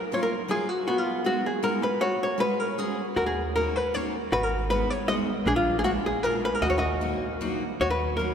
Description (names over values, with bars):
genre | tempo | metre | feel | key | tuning
musette waltz | 156 BPM | 3/4 | rubato | Eb minor | A4 = 438 Hz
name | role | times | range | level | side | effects
archtop guitar, miked and amplified | melody | 0.0-8.3 s | Cb4 to Eb5 | -25 LUFS | left 1 dB | none
picked steel-string acoustic guitar | accompaniment | 0.1-8.3 s | Gb3 to Ab4 | -32 LUFS | right 1 dB | none
upright bass | bass | 3.2-8.3 s | Ab1 to Eb2 | -32 LUFS | right 1 dB | none
room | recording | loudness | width
wet cathedral reverb, RT60 6.3 s | recorded in a church or concert hall | -24 LUFS | side -7 dB against mid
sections
0.0-7.8 A section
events
none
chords
0.0 Gbmaj7; 0.9 Abm7; 2.0 Dbsus4; 3.2 Ebm7; 4.3 Abm7; 5.5 Bb7; 6.6 Ebm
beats
0.12 0.50 | 0.87 1.25 1.63 | 2.01 2.40 2.79 | 3.17 3.56 3.95 | 4.33 4.71 5.09 | 5.47 5.85 6.24 | 6.62 7.01 7.41 | 7.81 8.20